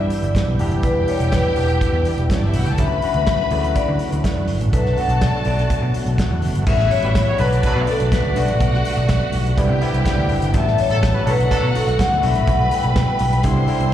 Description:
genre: disco.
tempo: 124 BPM.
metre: 4/4.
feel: straight.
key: unclear.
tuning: A4 = 440 Hz.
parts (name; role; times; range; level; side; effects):
vibraphone with medium mallets; melody; 0.0-13.9 s; A4 to G5; -22 LUFS; left 2 dB; slapback echo.
warm studio string section; second line; 0.0-13.9 s; C#4 to C6; -28 LUFS; equal; slapback echo, tape echo.
barky tine electric piano; accompaniment; 0.0-13.9 s; B2 to G4; -26 LUFS; left 4 dB; overdrive, slapback echo.
overdriven tonewheel organ; sustained chords; 0.0-13.9 s; C3 to B4; -29 LUFS; right 4 dB; chorus vibrato, slow rotary speaker.
picked electric bass; bass; 0.0-13.9 s; E1 to D3; -20 LUFS; right 1 dB; none.
warm soul drum kit; drums; 0.1-13.9 s; crash cymbal, hi-hat, kick drum, snare drum; -22 LUFS; equal; none.
warm horn section; stabs; 7.0-7.8, 10.9-11.7 s; F#3 to C#5; -25 LUFS; right 2 dB; slapback echo.
room: studio reverb.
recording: live gig heard through the venue's PA, recital hall reverb.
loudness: -16 LUFS.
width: side -11 dB against mid.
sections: 0.0-6.7 A section; 6.7-13.9 B section.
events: none.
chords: 0.0 G6; 0.6 Em7; 2.8 Dmaj7; 4.7 Bm7; 6.7 A13; 7.4 Bm7; 8.4 Gmaj9; 9.6 Cmaj9; 10.5 A13; 11.3 Bm7; 12.2 Gmaj9.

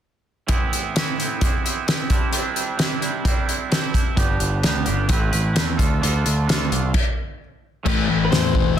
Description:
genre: quiet-loud alternative rock.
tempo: 130 BPM.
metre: 4/4.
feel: straight.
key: unclear.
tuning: A4 = 435 Hz.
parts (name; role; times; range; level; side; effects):
twangy electric guitar; arpeggios; 0.5-8.8 s; G2 to B4; -25 LUFS; right 5 dB; wide subtle chorus.
loose indie drum kit; drums; 0.5-8.7 s; crash cymbal, hi-hat, kick drum, snare drum; -21 LUFS; equal; none.
growling picked electric bass; bass; 4.2-8.8 s; E1 to E2; -22 LUFS; equal; overdrive.
thick fuzz guitar; riff; 7.9-8.8 s; A2 to A3; -20 LUFS; left 10 dB; distortion.
electric guitar through a small old amp; melody; 8.2-8.8 s; B4 to C5; -24 LUFS; left 6 dB; none.
room: light reverb.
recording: dense, heavily limited modern master.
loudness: -18 LUFS.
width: side -10 dB against mid.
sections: 0.5-7.9 A section.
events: stop 6.9-7.9.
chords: 0.5 Amadd9; 2.1 Cadd9; 4.2 G; 5.1 Amadd9; 5.8 Dm; 6.9 N.C.; 7.9 Amadd9.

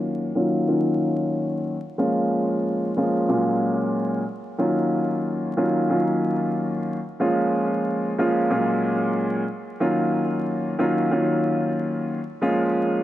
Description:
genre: hip hop.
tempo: 92 BPM.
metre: 4/4.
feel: swing 62% on 16ths.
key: Eb minor.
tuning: A4 = 440 Hz.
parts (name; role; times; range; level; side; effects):
warm upright piano; solo; 0.0-13.0 s; Bb2 to F4; -21 LUFS; equal; high-pass filter, low-pass filter, digital delay.
room: moderate small room reverb, RT60 0.5 s.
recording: vinyl crackle.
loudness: -21 LUFS.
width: side -13 dB against mid.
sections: 0.0-9.8 A section; 9.8-13.0 B section.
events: filter sweep on upright piano 0.0-9.8.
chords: 0.0 Ebm7; 2.0 Bbm7; 3.3 Gbmaj7/Bb; 4.6 Ebm7; 7.2 Bbm7; 8.5 Gbmaj7/Bb; 9.8 Ebm7; 12.4 Bbm7.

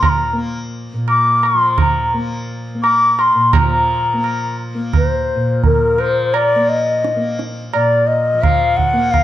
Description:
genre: indian classical, Hindustani.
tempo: 86 BPM.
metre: 5/4.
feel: straight.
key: Bb major.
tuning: A4 = 440 Hz.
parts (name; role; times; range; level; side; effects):
hollow bansuri; melody; 0.0-9.2 s; Bb4 to D6; -15 LUFS; left 2 dB; none.
tanpura; drone; 0.0-9.2 s; Bb2 to Bb3; -21 LUFS; equal; none.
tabla; percussion; 0.0-9.2 s; none; -19 LUFS; right 4 dB; none.
room: moderate recital hall reverb, RT60 1.5 s.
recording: dark, warm production.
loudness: -13 LUFS.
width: side -12 dB against mid.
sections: 0.0-3.5 A section; 3.5-9.2 B section.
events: none.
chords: none.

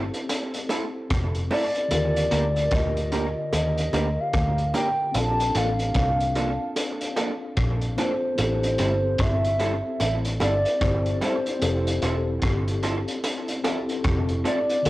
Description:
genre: lovers rock reggae.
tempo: 74 BPM.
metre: 4/4.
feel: swing 61% on 16ths.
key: F major.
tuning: A4 = 440 Hz.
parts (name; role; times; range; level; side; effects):
mellow tine electric piano; accompaniment; 0.0-14.9 s; D3 to C5; -30 LUFS; left 2 dB; medium stereo tremolo, cassette tape, analog delay, plate reverb.
vintage muted fingered electric bass; bass; 0.0-14.9 s; E1 to Eb2; -26 LUFS; equal; none.
crunchy breakbeat drum kit; drums; 0.1-14.9 s; hi-hat, kick drum, rim click; -28 LUFS; equal; cassette tape, analog delay.
bongos; percussion; 0.3-14.9 s; none; -34 LUFS; right 1 dB; none.
electric guitar through a small old amp; stabs; 0.7-14.6 s; F3 to Bb4; -31 LUFS; right 1 dB; cassette tape, analog delay, plate reverb.
hollow clarinet-like synth lead; melody; 1.5-14.9 s; C5 to A5; -26 LUFS; equal; chorus, cassette tape, tape echo.
room: light reverb.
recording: home recording on cassette.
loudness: -22 LUFS.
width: side -17 dB against mid.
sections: 0.0-14.9 A section.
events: none.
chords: 0.0 Fmaj7; 1.9 Ebmaj7; 5.1 Bbmaj7; 8.4 Am7; 11.6 Fmaj7.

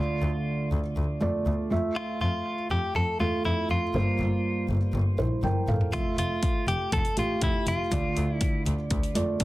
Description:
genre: piano-driven pop.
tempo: 121 BPM.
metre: 4/4.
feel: straight.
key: F major.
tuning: A4 = 438 Hz.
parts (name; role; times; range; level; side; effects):
direct-recorded clean electric guitar; melody; 0.0-8.6 s; E4 to A4; -31 LUFS; equal; plate reverb, digital delay.
felt-muted upright piano; accompaniment; 0.0-9.4 s; G2 to G5; -29 LUFS; right 2 dB; none.
clear double bass; bass; 0.0-9.4 s; F1 to F2; -28 LUFS; equal; none.
house drum kit; drums; 5.4-9.4 s; hi-hat, kick drum, toms; -28 LUFS; equal; none.
room: moderate small room reverb, RT60 0.5 s.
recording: dense, heavily limited modern master.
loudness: -24 LUFS.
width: side -17 dB against mid.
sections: 0.0-9.4 A section.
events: drum fill 5.4-5.9.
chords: 0.0 Dm; 1.7 Fmaj7; 3.9 C7sus4/G; 5.9 Fmaj7; 7.9 Dm.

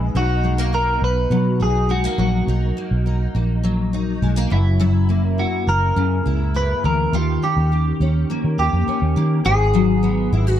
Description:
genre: indie pop, bedroom pop.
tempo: 103 BPM.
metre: 4/4.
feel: straight.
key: B major.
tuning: A4 = 440 Hz.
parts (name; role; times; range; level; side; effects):
picked steel-string acoustic guitar; accompaniment; 0.0-10.6 s; F#2 to G4; -22 LUFS; left 2 dB; ensemble chorus, vibrato effect.
vintage muted fingered electric bass; bass; 0.0-10.6 s; F#1 to D#3; -19 LUFS; equal; none.
clean electric guitar; melody; 0.2-10.3 s; E4 to B4; -23 LUFS; right 1 dB; analog chorus, tape echo.
room: light reverb, small room ambience.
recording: dark, warm production.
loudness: -16 LUFS.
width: side -10 dB against mid.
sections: 0.0-9.5 A section; 9.5-10.6 B section.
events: none.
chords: 0.1 Bmaj7; 4.5 F#7; 7.1 D#7; 9.5 G#m7.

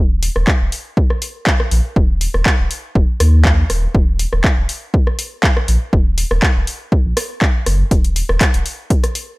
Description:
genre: deep house.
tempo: 121 BPM.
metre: 4/4.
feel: swing 53% on 16ths.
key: Eb minor.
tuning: A4 = 440 Hz.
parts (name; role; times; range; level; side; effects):
warm sub bass; bass; 0.0-8.6 s; Eb1 to Eb2; -16 LUFS; equal; tube saturation, sidechain pumping.
punchy analog drum machine; drums; 0.2-9.3 s; handclaps, hi-hat, rim click; -20 LUFS; equal; overdrive.
electronic kick drum; drums; 0.5-9.0 s; none; -14 LUFS; equal; overdrive.
room: digital ambience.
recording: none.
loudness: -13 LUFS.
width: side -23 dB against mid.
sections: 0.0-9.4 A section.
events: none.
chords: none.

